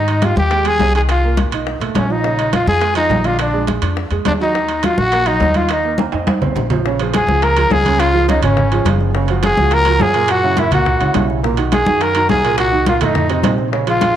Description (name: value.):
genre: Afro-Cuban jazz.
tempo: 209 BPM.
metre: 4/4.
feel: straight.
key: unclear.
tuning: A4 = 439 Hz.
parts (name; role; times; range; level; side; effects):
growling trumpet; melody; 0.0-14.2 s; Db4 to Bb4; -17 LUFS; left 1 dB; none.
breathy mellow jazz flute; second line; 0.0-14.2 s; Db5 to Bb5; -25 LUFS; left 1 dB; none.
warm grand piano; accompaniment; 0.0-14.1 s; A2 to D#5; -21 LUFS; right 7 dB; none.
upright bass; bass; 0.0-14.1 s; Gb1 to Ab2; -19 LUFS; left 1 dB; none.
congas; percussion; 0.1-14.2 s; none; -21 LUFS; equal; none.
timbales; percussion; 0.1-14.2 s; none; -25 LUFS; right 9 dB; none.
bongos; percussion; 0.2-14.2 s; none; -27 LUFS; left 11 dB; none.
room: moderate echo chamber reverb, RT60 1.5 s, studio ambience.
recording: 1960s-style stereo with parts hard left and right.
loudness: -13 LUFS.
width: side -10 dB against mid.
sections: 0.0-6.8 A section; 6.8-14.2 B section.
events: drum fill 6.0-6.8.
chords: 0.0 Abmaj7; 1.1 Bmaj7#11; 1.7 B7; 2.2 Bbm7; 3.4 Bb7b13; 4.5 Ebm; 6.3 F5; 6.8 Bbm7; 8.0 Db; 9.1 Gbmaj7; 10.3 Gb7; 11.4 Bmaj7; 12.6 Cm7b5; 13.2 F7.